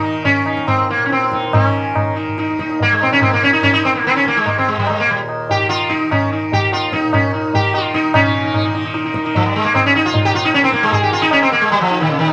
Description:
indian classical, Hindustani; 140-154 BPM; 4/4; straight; Eb raga khamaj; A4 = 440 Hz
sitar; melody; 0.0-12.3 s; Db3 to Ab4; -17 LUFS; equal
tanpura; drone; 0.0-12.3 s; Eb2 to Eb3; -27 LUFS; equal
tabla; percussion; 0.2-12.3 s; -23 LUFS; equal
wet studio reverb, RT60 0.5 s; -15 LUFS; mono
0.0-8.1 A section; 8.1-12.3 B section
speeding up 0.0-12.3

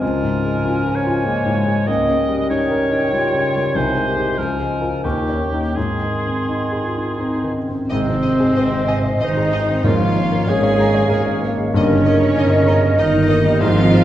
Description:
classical, romantic movement for piano and orchestra; 81-98 BPM; 3/4; rubato; Ab major; A4 = 439 Hz
warm concert grand piano; melody; 0.0-14.0 s; C2 to Bb5; -19 LUFS; left 1 dB
clear cor anglais; second line; 0.0-14.0 s; C4 to Eb5; -24 LUFS; right 1 dB
hollow concert flute; second line; 0.0-14.0 s; Eb5 to Db6; -27 LUFS; equal
warm clarinet; second line; 0.0-14.0 s; Ab3 to Db5; -26 LUFS; left 1 dB
mellow bassoon; accompaniment; 0.0-14.0 s; Eb3 to C4; -28 LUFS; equal
rich chamber violin section; melody; 7.9-14.0 s; C5 to Eb5; -32 LUFS; left 2 dB
rich chamber violin section; second line; 7.9-14.0 s; C5 to Ab5; -28 LUFS; equal
warm chamber viola section; accompaniment; 7.9-14.0 s; C4 to Ab4; -24 LUFS; equal
clear trombone section; sustained chords; 7.9-13.8 s; Eb3 to Ab3; -29 LUFS; right 2 dB
warm French horn section; sustained chords; 7.9-13.8 s; Bb3 to Eb4; -28 LUFS; left 2 dB
mellow tuba; bass; 7.9-14.0 s; G1 to Ab1; -25 LUFS; right 2 dB
rich chamber cello section; bass; 7.9-14.0 s; C3 to Ab3; -22 LUFS; right 2 dB
rich chamber double bass section; bass; 7.9-14.0 s; G1 to Ab1; -23 LUFS; right 2 dB
timpani; percussion; 9.8-10.8 s; Ab2; -24 LUFS; right 2 dB
wet recital hall reverb, RT60 1.5 s; heard from further back in the room; -15 LUFS; side -12 dB against mid
0.0-7.9 A section; 7.9-14.0 B section
0.0 Bbm7/Db; 1.9 Eb7/Db; 4.4 Bbm7/Db; 5.0 Eb7; 7.9 Ab; 9.8 Bbm7/Ab; 11.8 Eb7/G

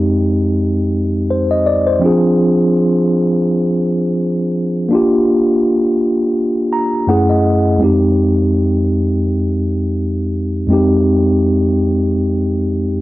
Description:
hip hop; 83 BPM; 4/4; swing 57% on 16ths; F dorian; A4 = 440 Hz
mellow tine electric piano; solo; 0.0-13.0 s; F2 to Bb5; -12 LUFS; equal; medium stereo tremolo, cassette tape, low-pass filter
wet small room reverb, RT60 0.5 s; -12 LUFS; side -17 dB against mid
0.0-13.0 A section
tine electric piano fill 6.3-7.8
0.0 Fm7; 2.0 Fm6; 4.9 Gm7; 7.1 Gbm7; 7.8 Fm7

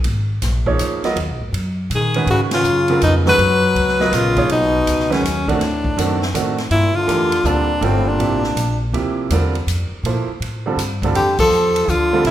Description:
modal jazz; 162 BPM; 3/4; swing 65% on 8ths; G dorian from 6.7 s; A4 = 442 Hz
upright bass; bass; 0.0-12.3 s; G1 to A#2; -21 LUFS; equal
swinging big-band drum kit; drums; 0.0-12.3 s; crash cymbal, hi-hat, kick drum, ride cymbal, snare drum; -27 LUFS; equal
clear baby grand piano; accompaniment; 0.7-12.3 s; C3 to D#5; -21 LUFS; right 4 dB
clear tenor saxophone; melody; 1.9-8.8, 11.2-12.3 s; C4 to B4; -17 LUFS; equal
trombone with metal mute; second line; 1.9-8.8, 11.2-12.3 s; F#2 to F#3; -23 LUFS; left 4 dB
moderate recital hall reverb, RT60 1.5 s; recorded in a church or concert hall; -15 LUFS; side -12 dB against mid
0.0-6.7 A section; 6.7-12.3 B section
band accent 2.5, 11.3
0.0 G#m9; 2.3 Bsus2; 5.6 D7b9; 6.7 Gm9; 11.1 Bbadd9 (rootless)

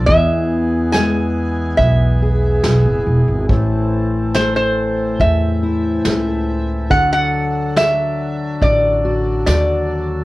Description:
acoustic folk duo or small band; 70 BPM; 4/4; straight; A minor; A4 = 440 Hz
lap resonator guitar; melody; 0.0-10.1 s; C5 to G#5; -17 LUFS; right 1 dB
fingerpicked steel-string acoustic guitar; accompaniment; 0.0-10.2 s; E2 to G#4; -19 LUFS; left 2 dB
hand-pumped harmonium; sustained chords; 0.0-10.2 s; E3 to A4; -26 LUFS; equal
upright bass; bass; 0.0-10.2 s; D1 to E2; -19 LUFS; equal
soft brush drum kit; drums; 0.1-9.7 s; kick drum, snare drum; -19 LUFS; equal
tambourine; percussion; 0.9-9.7 s; -31 LUFS; right 4 dB
light reverb; worn, warbling old tape, cassette tape, warbly pitch drift; -14 LUFS; side -18 dB against mid
0.0-10.2 A section
0.1 E; 3.5 Am; 6.9 D

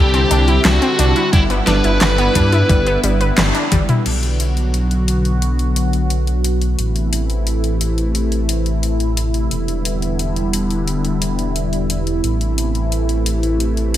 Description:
synthwave; 88 BPM; 4/4; straight; A dorian; A4 = 440 Hz
biting lead guitar; melody; 0.0-3.0 s; E4 to B4; -19 LUFS; equal; overdrive, digital delay, shimmer reverb
string machine, violins; second line; 0.0-3.0 s; E5 to B5; -28 LUFS; right 1 dB; ensemble chorus, digital delay, shimmer reverb
phased analog pad; sustained chords; 0.0-14.0 s; C3 to F#4; -21 LUFS; equal; phaser, chorus, vintage 12-bit sampler grit, shimmer reverb
wide unison pluck; arpeggios; 0.0-4.0 s; G3 to B4; -22 LUFS; left 2 dB; digital delay, shimmer reverb
dark detuned saw bass; bass; 0.0-14.0 s; E1 to G2; -18 LUFS; equal; tube saturation, sidechain pumping
pop drum kit; drums; 0.1-14.0 s; crash cymbal, handclaps, hi-hat, snare drum, toms; -20 LUFS; left 1 dB; studio reverb
electronic kick drum; drums; 1.3-3.9 s; -15 LUFS; equal; studio reverb
light reverb; -14 LUFS; side -12 dB against mid
0.0-4.1 A section; 4.1-14.0 B section
band accent 3.4-3.7; drum fill 3.7-4.1
0.0 Cadd9; 1.3 G6; 4.1 Bm; 6.8 Am; 9.5 Em7; 12.2 Am

